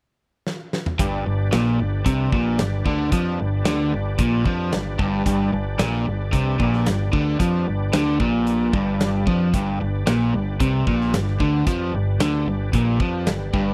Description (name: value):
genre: classic rock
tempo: 112 BPM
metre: 4/4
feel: straight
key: G mixolydian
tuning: A4 = 442 Hz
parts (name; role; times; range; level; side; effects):
- huge arena drum kit; drums; 0.5-13.7 s; hi-hat, kick drum, snare drum, toms; -27 LUFS; equal; none
- overdriven tonewheel organ; sustained chords; 1.0-13.7 s; D4 to D5; -35 LUFS; equal; chorus vibrato, slow rotary speaker
- overdriven electric guitar; riff; 1.0-13.7 s; G2 to F3; -26 LUFS; equal; none
- overdriven semi-hollow guitar; riff; 1.0-13.7 s; G2 to F3; -27 LUFS; equal; phaser
- growling fingered electric bass; bass; 1.0-13.7 s; G1 to F2; -29 LUFS; equal; overdrive
room: light reverb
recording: dry, close 1970s-style studio recording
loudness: -21 LUFS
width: mono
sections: 1.0-13.7 A section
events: drum fill 0.5-1.0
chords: 0.0 N.C.; 1.0 G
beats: 0.46 | 0.99 1.52 2.06 2.59 | 3.13 3.66 4.19 4.73 | 5.26 5.80 6.33 6.86 | 7.40 7.93 8.47 9.00 | 9.53 10.07 10.60 11.13 | 11.67 12.20 12.73 13.27